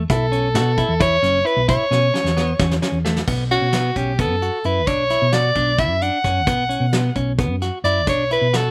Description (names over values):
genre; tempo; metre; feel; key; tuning
progressive instrumental, band music in an uneven meter; 263 BPM (eighths); 7/8; straight; B minor; A4 = 441 Hz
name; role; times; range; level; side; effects
clean electric guitar; arpeggios; 0.0-8.7 s; A3 to F#4; -27 LUFS; equal; slapback echo
hollow-body short-scale fingered electric bass; bass; 0.0-8.7 s; F#1 to B2; -24 LUFS; equal; none
bright soprano saxophone; melody; 0.1-8.7 s; F#4 to F#5; -22 LUFS; equal; none
soft brush drum kit; drums; 0.1-8.6 s; crash cymbal, hi-hat, kick drum, snare drum; -26 LUFS; equal; none
room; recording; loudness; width
little or no reverb; none; -19 LUFS; mono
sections
0.0-3.3 A section; 3.3-8.7 B section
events
drum fill 1.9-3.3; soprano saxophone solo 3.3-8.7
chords
0.0 A; 3.3 B5